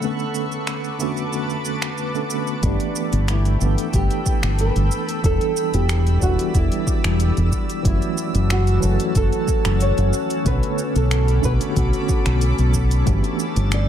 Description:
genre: sunset chillout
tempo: 92 BPM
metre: 4/4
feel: straight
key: B minor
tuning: A4 = 440 Hz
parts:
  - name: nylon-string guitar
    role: melody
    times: 0.0-13.9 s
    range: B3 to D5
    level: -27 LUFS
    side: right 1 dB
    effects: dub echo
  - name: mellow tine electric piano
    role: accompaniment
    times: 0.0-13.9 s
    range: D3 to A4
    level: -26 LUFS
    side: right 1 dB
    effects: medium stereo tremolo, auto-pan, analog delay
  - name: shimmering ambient pad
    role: sustained chords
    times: 0.0-13.9 s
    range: G3 to E6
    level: -29 LUFS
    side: left 1 dB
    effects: chorus, built-in reverb
  - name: deep house drum kit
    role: drums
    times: 0.0-13.9 s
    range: finger snaps, hi-hat, shaker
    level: -29 LUFS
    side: right 1 dB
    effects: overdrive
  - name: drifting glass-harmonics texture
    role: texture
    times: 0.0-2.6, 13.2-13.9 s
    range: A5 to B5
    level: -39 LUFS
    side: left 1 dB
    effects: chorus, built-in reverb
  - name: fingered electric bass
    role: bass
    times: 2.6-13.9 s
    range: E1 to B1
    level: -18 LUFS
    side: equal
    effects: none
  - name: electronic kick drum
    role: drums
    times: 2.6-13.2 s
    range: none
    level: -22 LUFS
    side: equal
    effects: overdrive
room: little or no reverb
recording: echo-heavy mix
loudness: -18 LUFS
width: side -10 dB against mid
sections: 0.0-2.6 A section; 2.6-13.9 B section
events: break 0.0-2.6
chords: 0.0 Bm9; 2.6 G69; 5.2 Em7; 7.8 F#m7; 10.5 Bm9; 13.1 G69

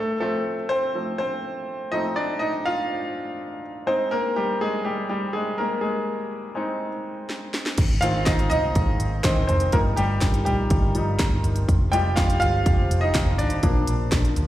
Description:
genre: piano-driven pop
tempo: 123 BPM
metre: 4/4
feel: straight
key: unclear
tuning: A4 = 444 Hz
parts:
  - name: bright grand piano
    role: accompaniment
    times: 0.0-14.5 s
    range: Eb3 to G5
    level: -24 LUFS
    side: equal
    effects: plate reverb, slapback echo
  - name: house drum kit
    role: drums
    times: 7.3-14.5 s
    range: crash cymbal, hi-hat, kick drum, snare drum, toms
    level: -23 LUFS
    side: equal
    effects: none
  - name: sweeping resonant pad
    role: sustained chords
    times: 8.0-14.5 s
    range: F3 to Bb4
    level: -34 LUFS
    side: right 1 dB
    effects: chorus, phaser, plate reverb
  - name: vintage muted picked electric bass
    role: bass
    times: 7.8-14.5 s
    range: F1 to D2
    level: -24 LUFS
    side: equal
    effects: none
room: moderate club reverb, RT60 0.7 s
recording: live gig heard through the venue's PA, recital hall reverb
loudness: -21 LUFS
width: side -14 dB against mid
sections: 0.0-7.8 A section; 7.8-14.5 B section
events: grand piano solo 0.0-7.8, 7.8-14.5; drum fill 7.3-7.8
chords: 0.0 F; 3.9 Ab; 9.7 Ebadd9/G; 11.7 Fmadd9; 13.6 Bb

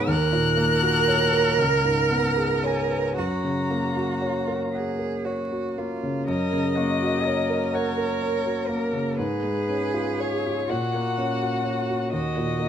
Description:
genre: classical, slow romantic movement for piano trio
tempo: 38-42 BPM (dotted quarters)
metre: 6/8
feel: rubato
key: F# major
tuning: A4 = 438 Hz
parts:
  - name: rich violin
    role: melody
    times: 0.0-12.7 s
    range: A#4 to F#6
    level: -28 LUFS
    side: left 7 dB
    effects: none
  - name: rich cello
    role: second line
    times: 0.0-12.7 s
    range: E#4 to A#4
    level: -27 LUFS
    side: right 6 dB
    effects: none
  - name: warm concert grand piano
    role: accompaniment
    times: 0.0-12.7 s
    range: C#2 to G#5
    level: -24 LUFS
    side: equal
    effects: none
room: light reverb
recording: close, detailed microphones, vinyl crackle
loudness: -22 LUFS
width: side -9 dB against mid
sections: 0.0-6.3 A section; 6.3-12.7 B section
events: none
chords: 0.1 D#m7; 1.6 C#7; 3.2 F#; 9.2 C#7/G#; 10.7 F#/A#; 12.1 D#m

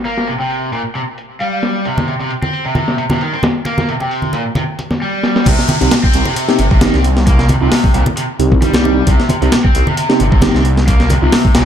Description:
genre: breakbeat, breaks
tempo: 133 BPM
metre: 4/4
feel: swing 55% on 16ths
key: C minor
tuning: A4 = 440 Hz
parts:
  - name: breakbeat sampler-style drum kit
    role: drums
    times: 0.0-11.7 s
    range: crash cymbal, hi-hat, kick drum, snare drum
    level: -14 LUFS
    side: equal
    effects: low-pass filter on snare, studio reverb, low-pass filter on hats, low-pass filter on kick, low-pass filter on cymbals
  - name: impact and downlifter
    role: sound effects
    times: 0.0, 5.5-9.1 s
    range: none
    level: -28 LUFS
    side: left 2 dB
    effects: none
  - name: cranked stack guitar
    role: riff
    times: 0.1-11.6 s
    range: Bb2 to C4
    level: -18 LUFS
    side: equal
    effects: overdrive, low-pass filter, tape echo
  - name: baroque flute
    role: melody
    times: 0.4-4.1 s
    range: F5 to G5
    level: -26 LUFS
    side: equal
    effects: small speaker sound, tape echo
  - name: congas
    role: percussion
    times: 2.0-11.2 s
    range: none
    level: -20 LUFS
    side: equal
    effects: none
  - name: phased detuned saw bass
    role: bass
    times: 5.5-11.6 s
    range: G1 to C2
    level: -15 LUFS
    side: equal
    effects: phaser
  - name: mellow tine electric piano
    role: stabs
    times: 5.8-11.3 s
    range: C4 to G4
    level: -18 LUFS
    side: right 1 dB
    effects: medium stereo tremolo, tape echo
room: light reverb, digital ambience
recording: dark, warm production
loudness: -11 LUFS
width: side -9 dB against mid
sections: 0.0-5.5 A section; 5.5-11.7 B section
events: drum fill 5.2; drop 5.5-11.7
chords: 0.0 C5; 5.5 Cm

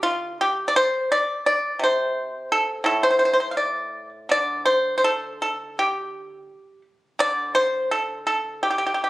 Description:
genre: chinese traditional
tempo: 84 BPM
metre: 2/4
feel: rubato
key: D yu mode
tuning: A4 = 439 Hz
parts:
  - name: pipa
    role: solo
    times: 0.0-9.1 s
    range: A2 to F5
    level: -20 LUFS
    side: equal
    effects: none
room: light reverb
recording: recorded on a phone in the room, studio ambience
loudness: -20 LUFS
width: side -18 dB against mid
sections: 0.0-4.3 A section; 4.3-9.1 B section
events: none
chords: none

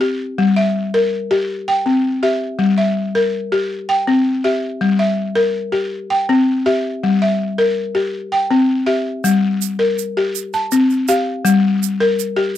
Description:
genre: west african traditional, West African string and xylophone music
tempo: 108 BPM (dotted quarters)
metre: 12/8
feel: straight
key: G dorian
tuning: A4 = 440 Hz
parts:
  - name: balafon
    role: arpeggios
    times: 0.0-12.6 s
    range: G3 to A5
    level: -15 LUFS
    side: left 2 dB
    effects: none
  - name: egg shaker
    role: percussion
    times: 9.2-12.3 s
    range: none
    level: -24 LUFS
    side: right 37 dB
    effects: none
room: light reverb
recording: dry, close 1970s-style studio recording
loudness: -15 LUFS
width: side -11 dB against mid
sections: 0.0-9.2 A section; 9.2-12.6 A section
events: none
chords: 0.4 Gm; 1.5 C; 2.6 Gm; 3.7 C; 4.8 Gm; 5.9 C; 7.0 Gm; 8.1 C; 9.2 Gm; 10.3 C5; 11.5 Gm

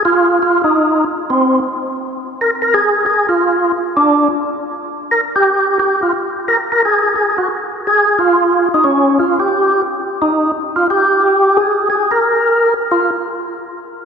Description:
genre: jazz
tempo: 177 BPM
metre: 4/4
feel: swing 64% on 8ths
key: F minor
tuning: A4 = 440 Hz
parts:
  - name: percussive tonewheel organ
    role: solo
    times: 0.0-13.1 s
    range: C4 to Bb4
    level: -12 LUFS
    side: equal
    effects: slow rotary speaker, overdrive, chorus vibrato
room: wet church reverb, RT60 3.9 s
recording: recorded in a church or concert hall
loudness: -12 LUFS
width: side -6 dB against mid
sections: 0.0-10.2 A section; 10.2-12.9 B section; 12.9-14.1 C section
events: none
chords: none

